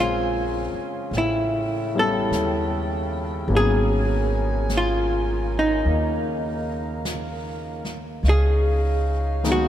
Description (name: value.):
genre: jazz ballad.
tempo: 50 BPM.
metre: 4/4.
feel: swing 69% on 8ths.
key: unclear.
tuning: A4 = 440 Hz.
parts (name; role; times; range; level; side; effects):
archtop guitar, miked and amplified; melody; 0.0-9.7 s; Eb4 to A4; -24 LUFS; equal; none.
warm baby grand piano; accompaniment; 0.0-9.7 s; Eb3 to F4; -28 LUFS; left 2 dB; none.
clear saxophone section; sustained chords; 0.0-9.7 s; Db3 to Ab5; -32 LUFS; equal; none.
upright bass; bass; 0.0-9.7 s; Ab1 to Eb2; -24 LUFS; equal; none.
jazz brush drum kit; drums; 1.1-9.7 s; brushed snare drum, hi-hat, snare drum; -36 LUFS; equal; none.
room: moderate cathedral reverb, RT60 5.8 s.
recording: in a vast, echoing space.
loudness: -20 LUFS.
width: side -11 dB against mid.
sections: 0.0-9.7 A section.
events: none.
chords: 0.0 Bbm9; 1.1 A9; 3.5 Abm11; 8.2 Db9.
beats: 1.12 2.31 | 3.50 4.68 5.87 7.05 | 8.24 9.44.